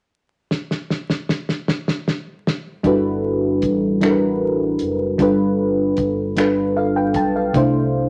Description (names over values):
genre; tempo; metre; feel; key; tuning
slow six-eight R&B; 51 BPM (dotted quarters); 6/8; straight; unclear; A4 = 440 Hz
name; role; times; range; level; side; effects
cloth-damped thuddy drum kit; drums; 0.5-7.7 s; finger snaps, hi-hat, kick drum, snare drum; -24 LUFS; equal; none
mellow FM electric piano; accompaniment; 2.8-8.1 s; C3 to A5; -19 LUFS; equal; chorus
round analog bass; bass; 2.8-8.1 s; F#1 to C2; -33 LUFS; equal; none
room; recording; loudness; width
moderate studio reverb, RT60 0.8 s; vinyl crackle, nothing above 10.5 kHz; -20 LUFS; mono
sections
0.5-2.8 A section; 2.8-8.1 B section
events
drum fill 0.5-2.8; FM electric piano fill 6.4-7.5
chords
0.5 N.C.; 2.8 Gmaj13; 5.2 G7; 7.5 C69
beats
| 0.49 1.66 | 2.84 4.02 | 5.19 6.37 | 7.54